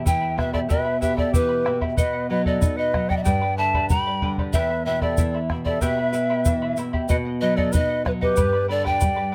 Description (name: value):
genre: andean folk, Andean ensemble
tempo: 94 BPM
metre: 2/4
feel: straight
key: E minor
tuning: A4 = 437 Hz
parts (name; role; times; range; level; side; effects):
- charango; accompaniment; 0.0-9.3 s; E4 to B5; -34 LUFS; equal; none
- nylon-string guitar; accompaniment; 0.0-9.3 s; E2 to B4; -28 LUFS; equal; none
- mellow polished pan flute; melody; 0.1-9.3 s; B4 to B5; -26 LUFS; equal; none
- bright large quena; second line; 0.1-9.3 s; F#4 to G5; -34 LUFS; equal; none
- bombo; percussion; 0.1-9.2 s; none; -26 LUFS; equal; none
- tube shaker; percussion; 0.1-9.2 s; none; -39 LUFS; equal; none
room: light reverb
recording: close, detailed microphones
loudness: -22 LUFS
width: mono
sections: 0.0-7.1 A section; 7.1-9.3 A section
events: none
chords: 0.0 Em; 2.0 B; 3.3 G; 4.5 Em; 7.1 B; 8.4 G